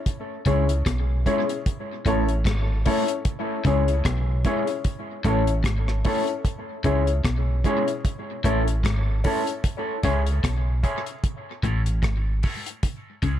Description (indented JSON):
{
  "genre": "dub reggae",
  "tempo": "75 BPM",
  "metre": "4/4",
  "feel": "swing 57% on 16ths",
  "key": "C# minor",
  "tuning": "A4 = 440 Hz",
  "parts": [
    { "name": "deep reggae drum kit", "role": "drums", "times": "0.1-13.4 s", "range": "hi-hat, kick drum, rim click", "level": "-26 LUFS", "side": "equal", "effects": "none" },
    { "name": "mellow electric guitar", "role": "accompaniment", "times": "0.5-13.4 s", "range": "G#3 to A4", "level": "-30 LUFS", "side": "right 6 dB", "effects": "high-pass filter, tape echo" },
    { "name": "electric guitar at the edge of break-up", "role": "riff", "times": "0.5-13.4 s", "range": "G#2 to C#3", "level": "-30 LUFS", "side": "left 4 dB", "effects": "tape echo" },
    { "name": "dark upright piano", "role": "stabs", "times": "0.5-13.4 s", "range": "C#4 to C#5", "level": "-28 LUFS", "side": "left 6 dB", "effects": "high-pass filter, tape echo" },
    { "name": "deep dub fingered electric bass", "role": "bass", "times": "0.5-13.4 s", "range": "G#1 to C#2", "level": "-23 LUFS", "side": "equal", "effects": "none" }
  ],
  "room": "light reverb, small room ambience",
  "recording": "none",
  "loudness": "-21 LUFS",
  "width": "side -11 dB against mid",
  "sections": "0.0-9.6 A section; 9.6-13.4 A section",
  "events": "filter sweep 6.4-13.4",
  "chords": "0.1 C#m; 1.7 A; 3.3 C#m; 4.8 A; 6.4 C#m; 8.0 A; 9.6 C#m; 11.2 A; 12.8 C#m",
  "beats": "| 0.06 0.86 1.65 2.45 | 3.25 4.05 4.85 5.65 | 6.45 7.24 8.04 8.84 | 9.64 10.44 11.23 12.03 | 12.83"
}